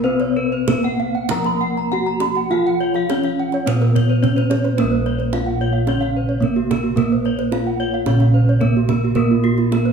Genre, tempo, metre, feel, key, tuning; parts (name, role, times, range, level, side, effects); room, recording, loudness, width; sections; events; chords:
Balinese gamelan; 93-110 BPM; 4/4; straight; Bb pelog; A4 = 442 Hz
gamelan-type bronze metallophone; melody; 0.0-9.9 s; Bb3 to Bb4; -21 LUFS; equal
gamelan-type bronze metallophone; accompaniment; 0.0-9.9 s; Db3 to Cb4+35c; -25 LUFS; right 2 dB
gamelan-type bronze metallophone; arpeggios; 0.0-9.9 s; Gb4 to Bb5; -26 LUFS; left 4 dB
gamelan-type bronze metallophone; arpeggios; 0.0-9.9 s; F4 to Cb6+35c; -26 LUFS; right 6 dB
gamelan-type bossed gongs; bass; 0.0-9.9 s; Bb1 to Cb5+35c; -20 LUFS; right 1 dB
kendang; percussion; 0.2-9.8 s; -26 LUFS; right 6 dB
moderate recital hall reverb, RT60 1.6 s; studio ambience; -16 LUFS; side -6 dB against mid
0.0-4.8 A section; 4.8-9.9 B section